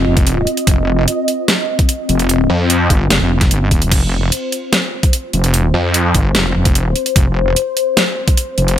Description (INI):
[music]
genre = heavy wobble dubstep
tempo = 148 BPM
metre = 4/4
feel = half-time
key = unclear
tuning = A4 = 440 Hz
[part]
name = lush unison pad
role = sustained chords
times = 0.0-8.8 s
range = C4 to Eb5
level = -20 LUFS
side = left 2 dB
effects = chorus, phaser, sidechain pumping
[part]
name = wobble bass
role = bass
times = 0.0-8.8 s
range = Eb1 to G1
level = -15 LUFS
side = equal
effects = chorus, overdrive
[part]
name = dubstep drum kit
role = drums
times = 0.2-8.8 s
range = crash cymbal, hi-hat, snare drum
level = -17 LUFS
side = equal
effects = none
[part]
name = electronic kick drum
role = drums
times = 0.2-8.4 s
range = none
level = -13 LUFS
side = equal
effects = overdrive
[part]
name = snarling distorted saw bass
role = bass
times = 2.5-2.9, 5.7-6.1 s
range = F2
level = -14 LUFS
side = equal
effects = distortion, overdrive
[sound]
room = little or no reverb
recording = none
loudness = -12 LUFS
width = side -10 dB against mid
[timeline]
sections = 0.0-8.8 A section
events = none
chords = 0.0 F5